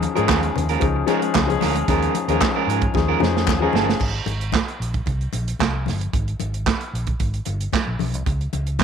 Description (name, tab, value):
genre	disco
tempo	113 BPM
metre	4/4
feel	straight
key	Ab major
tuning	A4 = 440 Hz
part	electric guitar at the edge of break-up	accompaniment	0.0-3.9 s	Ab3 to Bb4	-25 LUFS	right 11 dB	none
part	warm grand piano	accompaniment	0.0-4.0 s	F3 to Ab4	-22 LUFS	left 9 dB	none
part	fingered electric bass	bass	0.0-8.8 s	G1 to Ab2	-24 LUFS	equal	none
part	warm soul drum kit	drums	0.0-8.8 s	crash cymbal, handclaps, hi-hat, kick drum, snare drum	-23 LUFS	right 4 dB	none
part	congas	percussion	0.0-8.8 s	none	-30 LUFS	left 12 dB	none
part	group handclap	percussion	0.3-3.6 s	none	-29 LUFS	left 9 dB	none
room	moderate spring reverb, RT60 1.3 s, small room reverb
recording	1960s-style stereo with parts hard left and right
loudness	-19 LUFS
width	side -7 dB against mid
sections	0.0-4.0 A section; 4.0-8.8 B section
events	drum fill 2.9-4.0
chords	0.0 Eb9sus4; 4.0 Abmaj9; 8.3 N.C.